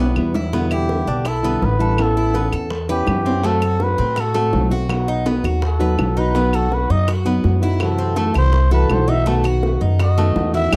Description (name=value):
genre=latin, Cuban son and guajira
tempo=165 BPM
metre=4/4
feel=straight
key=unclear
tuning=A4 = 440 Hz
part: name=trumpet with cup mute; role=melody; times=0.0-10.8 s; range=G4 to E5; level=-25 LUFS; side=equal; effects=none
part: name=flamenco guitar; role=accompaniment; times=0.0-10.8 s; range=B2 to F#4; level=-25 LUFS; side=equal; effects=none
part: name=Cuban tres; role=arpeggios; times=0.0-10.8 s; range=A3 to B4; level=-27 LUFS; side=equal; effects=none
part: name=upright bass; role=bass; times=0.0-10.8 s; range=A1 to A2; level=-21 LUFS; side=equal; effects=none
part: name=claves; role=percussion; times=0.2-10.8 s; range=none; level=-31 LUFS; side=equal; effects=none
part: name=bongos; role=percussion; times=0.3-10.8 s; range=none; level=-30 LUFS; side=equal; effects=none
room=little or no reverb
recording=dry, close 1970s-style studio recording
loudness=-18 LUFS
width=mono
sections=0.5-10.8 A section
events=drum fill 0.0-0.5; muted trumpet solo 0.5-10.8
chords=0.0 Em; 0.5 Em7; 2.0 Aadd9; 3.4 F#dim; 4.9 B; 7.8 F#m7b5; 9.3 B7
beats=0.17 | 0.53 0.89 1.26 1.62 | 1.99 2.35 2.71 3.08 | 3.44 3.81 4.17 4.53 | 4.90 5.26 5.63 5.99 | 6.35 6.72 7.08 7.45 | 7.81 8.17 8.54 8.90 | 9.27 9.63 9.99 10.36 | 10.72